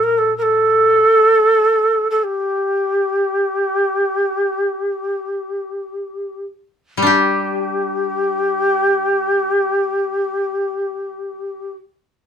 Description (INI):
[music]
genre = japanese traditional, Japanese chamber music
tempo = free time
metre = none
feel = none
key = G hirajoshi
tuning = A4 = 440 Hz
[part]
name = breathy shakuhachi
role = melody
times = 0.0-11.7 s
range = G4 to Bb4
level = -16 LUFS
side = equal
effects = none
[part]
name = koto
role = accompaniment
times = 0.0-11.7 s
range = Bb2 to G4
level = -19 LUFS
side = left 2 dB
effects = none
[sound]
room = light reverb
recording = minimal, uncompressed stereo recording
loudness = -15 LUFS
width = side -8 dB against mid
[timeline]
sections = 0.0-7.1 A section; 7.1-12.3 B section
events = slowing down 0.0-7.1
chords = none